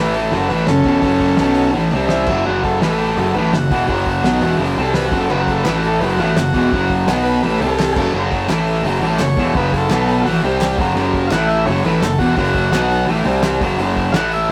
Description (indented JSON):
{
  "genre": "garage rock duo or trio",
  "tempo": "169 BPM",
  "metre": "4/4",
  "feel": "straight",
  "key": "F# minor",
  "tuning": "A4 = 440 Hz",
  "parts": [
    { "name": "overdriven combo organ", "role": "melody", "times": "0.0-14.5 s", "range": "C#4 to F#5", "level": "-23 LUFS", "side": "equal", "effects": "digital delay" },
    { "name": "overdriven combo organ", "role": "sustained chords", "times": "0.0-14.5 s", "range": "none", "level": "barely audible", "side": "none", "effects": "none" },
    { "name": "fuzz guitar", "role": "riff", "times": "0.0-14.5 s", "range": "E2 to C4", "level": "-19 LUFS", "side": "equal", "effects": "distortion" },
    { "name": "fuzz picked electric bass", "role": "bass", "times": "0.0-14.5 s", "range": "E1 to C2", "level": "-24 LUFS", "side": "equal", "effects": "overdrive, tube saturation" },
    { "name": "cloth-damped thuddy drum kit", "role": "drums", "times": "0.1-14.5 s", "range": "crash cymbal, hi-hat, kick drum, snare drum", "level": "-26 LUFS", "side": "equal", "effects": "none" },
    { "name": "group handclap", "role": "percussion", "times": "5.7-14.2 s", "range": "none", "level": "-31 LUFS", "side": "equal", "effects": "none" }
  ],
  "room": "moderate studio reverb, RT60 0.6 s",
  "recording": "rough rehearsal-room recording",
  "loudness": "-16 LUFS",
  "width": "mono",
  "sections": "0.0-14.5 A section",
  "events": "transistor combo organ solo 0.0-14.5",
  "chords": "0.3 F#m; 1.4 B5; 1.8 A5; 1.9 C5; 2.3 F#m; 2.8 A5; 3.2 F#m; 4.8 C5; 5.1 F#m; 5.7 A5; 6.0 F#m; 7.1 B5; 7.4 Asus2; 7.6 C5; 8.0 F#m; 8.5 A5; 8.8 F#m; 9.9 B5; 10.3 F#m; 10.4 C5; 10.8 F#m; 11.3 A5; 11.7 F#m; 12.7 B5; 13.1 A5; 13.3 C5; 13.6 F#m; 14.1 A5"
}